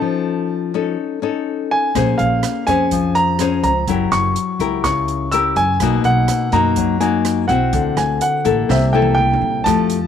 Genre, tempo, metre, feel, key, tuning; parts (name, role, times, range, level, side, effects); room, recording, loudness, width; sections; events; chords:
bossa nova; 125 BPM; 4/4; straight; A4 = 440 Hz
warm grand piano; melody; 0.0-10.1 s; E5 to Fb6; -19 LUFS; right 2 dB
nylon-string guitar; accompaniment; 0.0-10.1 s; Cb3 to C5; -18 LUFS; left 8 dB
upright bass; bass; 2.0-10.1 s; Gb1 to Gb2; -21 LUFS; right 2 dB
open jazz drum kit; drums; 2.0-10.0 s; hi-hat, kick drum, rim click, snare drum, toms; -28 LUFS; right 7 dB
light reverb, small room ambience; 1960s-style stereo with parts hard left and right; -15 LUFS; side -8 dB against mid
0.0-9.7 A section
drum fill 8.7-9.7
0.0 F7b13; 2.0 Bbm9; 3.9 Gb7b9; 5.8 Cbmaj7; 7.7 D9; 8.7 C6